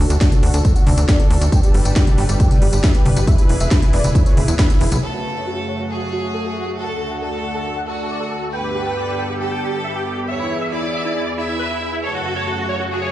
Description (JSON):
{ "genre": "uplifting trance", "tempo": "137 BPM", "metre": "4/4", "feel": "straight", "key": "F# minor", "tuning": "A4 = 440 Hz", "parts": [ { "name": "supersaw chords", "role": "melody", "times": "0.0-13.1 s", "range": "E4 to G5", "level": "-25 LUFS", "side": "right 1 dB", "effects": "analog chorus, sidechain pumping, low-pass filter, tape echo" }, { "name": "lush unison pad", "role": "sustained chords", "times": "0.0-13.1 s", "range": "D2 to B4", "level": "-26 LUFS", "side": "equal", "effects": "chorus, sidechain pumping" }, { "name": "tight sequencer bass", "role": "bass", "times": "0.0-5.0 s", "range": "E1 to E2", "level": "-16 LUFS", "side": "equal", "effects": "tube saturation, sidechain pumping" }, { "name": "techno drum kit", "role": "drums", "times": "0.1-5.0 s", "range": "hi-hat, snare drum, tambourine, toms", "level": "-22 LUFS", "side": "left 1 dB", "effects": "sidechain pumping on hats, small room ambience, sidechain pumping on toms, sidechain pumping on perc" }, { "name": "electronic kick drum", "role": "drums", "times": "0.2-4.7 s", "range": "none", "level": "-15 LUFS", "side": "equal", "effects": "small room ambience" }, { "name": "bright chamber violin section", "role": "second line", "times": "5.0-13.1 s", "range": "F#4 to E5", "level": "-26 LUFS", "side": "equal", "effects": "ping-pong delay" } ], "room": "digital ambience", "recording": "played on a big sound system in a bare room, stone room reverb, nothing above 10.9 kHz", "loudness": "-16 LUFS", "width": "side -14 dB against mid", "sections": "0.0-5.0 A section; 5.0-13.1 B section", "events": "filter sweep on analog synth pad 0.0-5.0; band accent 4.6; filter sweep on supersaw synth 5.0-13.1", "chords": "0.0 D; 1.5 Gadd9; 3.3 E; 5.0 F#m; 6.8 D; 8.5 Gadd9; 10.3 E; 12.0 F#m" }